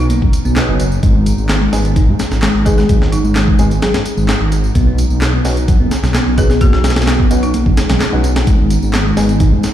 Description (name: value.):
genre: breakbeat, breaks.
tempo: 129 BPM.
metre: 4/4.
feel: straight.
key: G# minor.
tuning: A4 = 440 Hz.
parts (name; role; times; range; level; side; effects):
folk marimba with medium hard mallets; melody; 0.0-7.9 s; D#4 to G#4; -22 LUFS; left 1 dB; AM radio sound, vintage 12-bit sampler grit, tape echo.
warbly tape-like pad; sustained chords; 0.0-9.7 s; G#3 to D#4; -24 LUFS; right 2 dB; chorus, built-in reverb, vintage 12-bit sampler grit, sidechain pumping.
dark detuned saw bass; bass; 0.0-9.6 s; F#1 to G#2; -15 LUFS; equal; none.
picked electric bass; riff; 0.1-9.6 s; F#3 to D#4; -20 LUFS; left 1 dB; tube saturation, vintage 12-bit sampler grit, tape echo.
breakbeat sampler-style drum kit; drums; 0.1-9.7 s; hi-hat, kick drum, snare drum; -15 LUFS; equal; none.
electronic tambourine and handclaps; drums; 0.1-9.7 s; none; -26 LUFS; equal; overdrive.
warm baby grand piano; stabs; 0.6-9.2 s; G#3 to G#4; -24 LUFS; right 1 dB; vintage 12-bit sampler grit, tape echo.
swell; sound effects; 7.7-8.5 s; none; -25 LUFS; left 1 dB; none.
room: little or no reverb.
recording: played on a big sound system in a bare room, large studio reverb.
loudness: -11 LUFS.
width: side -11 dB against mid.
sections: 0.0-9.7 A section.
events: swell 7.7-8.5.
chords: 0.0 Badd9; 1.0 G#m; 4.8 Badd9; 8.5 G#m.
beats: 0.10 0.56 | 1.03 1.50 1.96 2.43 | 2.89 3.36 3.82 4.29 | 4.75 5.22 5.68 6.15 | 6.61 7.08 7.54 8.01 | 8.47 8.94 9.40.